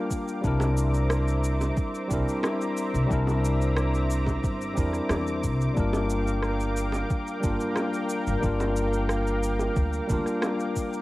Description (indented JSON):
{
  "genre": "sunset chillout",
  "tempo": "90 BPM",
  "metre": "4/4",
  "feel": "straight",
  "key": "G dorian",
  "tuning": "A4 = 438 Hz",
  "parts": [
    { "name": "tine electric piano", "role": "accompaniment", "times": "0.0-11.0 s", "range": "G3 to Bb4", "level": "-28 LUFS", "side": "left 1 dB", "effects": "auto-pan, tape echo, shimmer reverb" },
    { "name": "lush unison pad", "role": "sustained chords", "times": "0.0-11.0 s", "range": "Bb4 to D6", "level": "-33 LUFS", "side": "equal", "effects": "chorus, vintage 12-bit sampler grit, shimmer reverb" },
    { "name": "electronic cabasa and rim click", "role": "drums", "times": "0.1-11.0 s", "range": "none", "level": "-36 LUFS", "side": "equal", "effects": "overdrive" },
    { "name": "electronic kick drum", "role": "drums", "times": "0.1-10.9 s", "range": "none", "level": "-28 LUFS", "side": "equal", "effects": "overdrive" },
    { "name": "upright bass", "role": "bass", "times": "0.4-10.2 s", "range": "G1 to E2", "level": "-26 LUFS", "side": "equal", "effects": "none" },
    { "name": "bongos", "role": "percussion", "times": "0.6-10.6 s", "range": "none", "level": "-34 LUFS", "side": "right 1 dB", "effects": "none" }
  ],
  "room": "light reverb",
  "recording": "worn, warbling old tape, cassette tape, warbly pitch drift",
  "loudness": "-24 LUFS",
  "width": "side -18 dB against mid",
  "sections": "0.0-11.0 A section",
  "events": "none",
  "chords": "0.4 C9; 5.8 Gm7"
}